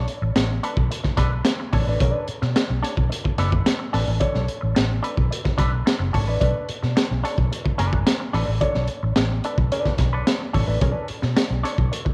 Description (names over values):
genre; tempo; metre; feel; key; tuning
funk; 109 BPM; 4/4; straight; B minor; A4 = 441 Hz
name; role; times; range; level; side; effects
semi-hollow electric guitar; accompaniment; 0.0-12.1 s; D4 to C#5; -30 LUFS; equal; wah, spring reverb
vintage muted fingered electric bass; bass; 0.0-12.1 s; F#1 to B2; -25 LUFS; equal; none
crunchy breakbeat drum kit; drums; 0.1-12.1 s; hi-hat, kick drum, snare drum; -25 LUFS; equal; none
room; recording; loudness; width
light reverb, studio ambience; none; -22 LUFS; mono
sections
0.0-12.1 A section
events
none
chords
0.0 Bm7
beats
0.35 0.90 1.45 | 2.00 2.55 3.10 3.66 | 4.21 4.76 5.31 5.86 | 6.41 6.96 7.51 8.06 | 8.61 9.16 9.71 10.26 | 10.81 11.36 11.91